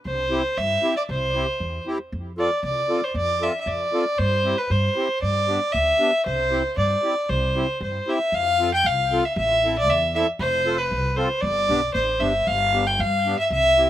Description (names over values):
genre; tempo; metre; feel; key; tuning
alpine folk, alpine dance band; 116 BPM; 2/4; straight; C major; A4 = 441 Hz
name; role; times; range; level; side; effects
warm fiddle; melody; 0.1-13.9 s; B4 to G5; -21 LUFS; equal; slapback echo
upright bass; bass; 0.1-13.9 s; F1 to G2; -27 LUFS; equal; none
accordion; accompaniment; 0.3-13.9 s; B3 to A4; -28 LUFS; equal; light tremolo tuning, slapback echo
room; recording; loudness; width
little or no reverb; recorded outdoors, with no room sound; -20 LUFS; side -12 dB against mid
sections
0.0-8.3 A section; 8.3-13.9 B section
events
none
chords
0.0 C; 2.1 F6; 4.2 C/G; 5.2 G; 6.3 C; 8.3 F; 9.4 Am; 10.4 F; 11.4 G